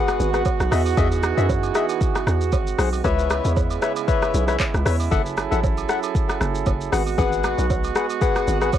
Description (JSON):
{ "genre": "amapiano", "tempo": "116 BPM", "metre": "4/4", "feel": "swing 55% on 16ths", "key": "unclear", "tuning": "A4 = 440 Hz", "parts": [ { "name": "mellow brass ensemble", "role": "sustained chords", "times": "0.0-8.8 s", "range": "C#3 to A4", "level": "-26 LUFS", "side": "right 11 dB", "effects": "sidechain pumping" }, { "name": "percussive organ stab", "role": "stabs", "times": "0.0-8.7 s", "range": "G#4 to F#5", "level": "-25 LUFS", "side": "left 10 dB", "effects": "chorus, tape echo" }, { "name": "afro-pop drum kit", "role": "drums", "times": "0.1-8.8 s", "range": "handclaps, hi-hat, kick drum, rim click, shaker", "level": "-24 LUFS", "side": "equal", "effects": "cassette tape" }, { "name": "agogo bells and woodblock", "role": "percussion", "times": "0.1-8.8 s", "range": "none", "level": "-33 LUFS", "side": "right 12 dB", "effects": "none" }, { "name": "hollow log drum bass", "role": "bass", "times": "0.2-8.7 s", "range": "F#1 to F#2", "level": "-23 LUFS", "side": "equal", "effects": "none" } ], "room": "little or no reverb", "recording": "home recording on cassette", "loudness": "-19 LUFS", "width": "side -10 dB against mid", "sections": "0.0-8.8 A section", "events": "none", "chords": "0.0 G#m7; 0.7 Emaj7; 2.5 G#7; 3.0 C#m7; 5.1 F#m7; 6.9 G#m7" }